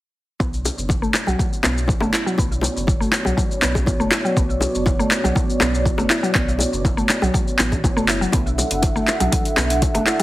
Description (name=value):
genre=afro house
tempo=121 BPM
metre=4/4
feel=straight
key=B minor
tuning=A4 = 440 Hz
part: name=dark analog pad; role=sustained chords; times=0.4-10.2 s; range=B3 to F#5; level=-25 LUFS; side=right 1 dB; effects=chorus, sidechain pumping
part: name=mallet-like synth pluck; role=arpeggios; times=0.4-10.2 s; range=F#3 to E4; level=-24 LUFS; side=equal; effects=chorus, sidechain pumping, dub echo
part: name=warm sub bass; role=bass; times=0.4-10.0 s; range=F#1 to B1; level=-25 LUFS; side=equal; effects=sidechain pumping
part: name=afro-pop drum kit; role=drums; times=0.4-10.2 s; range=handclaps, hi-hat, shaker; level=-22 LUFS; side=equal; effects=overdrive
part: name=electronic kick drum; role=drums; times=0.4-9.9 s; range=none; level=-21 LUFS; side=equal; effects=overdrive
part: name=bongos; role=percussion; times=0.4-10.2 s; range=none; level=-27 LUFS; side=left 2 dB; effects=none
room=light reverb, digital ambience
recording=heavily compressed radio sound, multiband compression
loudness=-17 LUFS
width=side -16 dB against mid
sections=0.4-10.2 A section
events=filter sweep on synth pluck 0.4-10.2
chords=0.4 Bmadd9; 8.3 D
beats=| 0.40 0.90 1.39 1.89 | 2.38 2.88 3.38 3.87 | 4.37 4.86 5.36 5.86 | 6.35 6.85 7.34 7.84 | 8.33 8.83 9.33 9.82